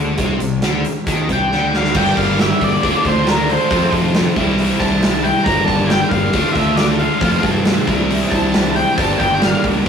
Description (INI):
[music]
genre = classic rock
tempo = 136 BPM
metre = 4/4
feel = straight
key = G dorian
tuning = A4 = 439 Hz
[part]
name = distorted electric guitar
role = riff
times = 0.0-9.9 s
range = F2 to G4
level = -20 LUFS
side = left 1 dB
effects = distortion
[part]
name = fuzz fingered electric bass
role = bass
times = 0.0-9.9 s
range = G1 to G2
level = -21 LUFS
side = equal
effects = overdrive
[part]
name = big rock drum kit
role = drums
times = 0.2-9.9 s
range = crash cymbal, hi-hat, kick drum, snare drum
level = -18 LUFS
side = equal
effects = none
[part]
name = octave-fuzz lead guitar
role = melody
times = 1.3-9.6 s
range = Bb4 to Bb5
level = -19 LUFS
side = equal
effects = distortion
[part]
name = picked old ladder-braced acoustic guitar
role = accompaniment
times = 1.9-9.9 s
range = G2 to Bb4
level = -28 LUFS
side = equal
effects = none
[part]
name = phased string machine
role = sustained chords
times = 2.0-9.9 s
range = G3 to D5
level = -26 LUFS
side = equal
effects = none
[sound]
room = wet small room ambience, RT60 0.5 s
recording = rough rehearsal-room recording, warm saturation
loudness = -13 LUFS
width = side -7 dB against mid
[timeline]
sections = 0.0-1.9 A section; 1.9-9.9 B section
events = drum fill 1.5-1.9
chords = 0.0 C5; 1.9 Gm; 2.8 Dm; 3.7 F; 4.4 C; 5.5 Gm; 6.3 Dm; 7.2 F; 7.9 C; 9.0 Gm